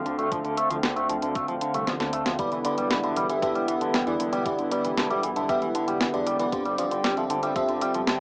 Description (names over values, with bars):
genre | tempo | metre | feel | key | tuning
synthwave | 116 BPM | 4/4 | straight | E phrygian | A4 = 440 Hz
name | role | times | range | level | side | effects
warm analog pad | sustained chords | 0.0-8.2 s | D3 to F5 | -29 LUFS | equal | chorus, sidechain pumping, cassette tape
wide detuned saw bass | bass | 0.0-8.2 s | D1 to E2 | -37 LUFS | equal | chorus, sidechain pumping
electric guitar with an envelope filter | arpeggios | 0.1-8.2 s | D3 to A3 | -28 LUFS | equal | cassette tape, tape echo
clean 12-bit digital drum machine | drums | 0.1-8.2 s | hi-hat, snare drum | -28 LUFS | equal | overdrive, cassette tape
electronic kick drum | drums | 0.3-7.7 s | none | -36 LUFS | equal | overdrive, cassette tape
FM electric piano with soft pad layer | stabs | 2.4-8.2 s | B3 to E5 | -28 LUFS | equal | chorus, vintage 12-bit sampler grit, cassette tape, tape echo
room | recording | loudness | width
wet booth ambience, RT60 0.2 s | home recording on cassette, small speaker sound | -23 LUFS | side -37 dB against mid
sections
0.0-8.2 A section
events
drum fill 1.9-2.4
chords
0.0 Dm7; 2.4 Em7; 6.5 G7sus4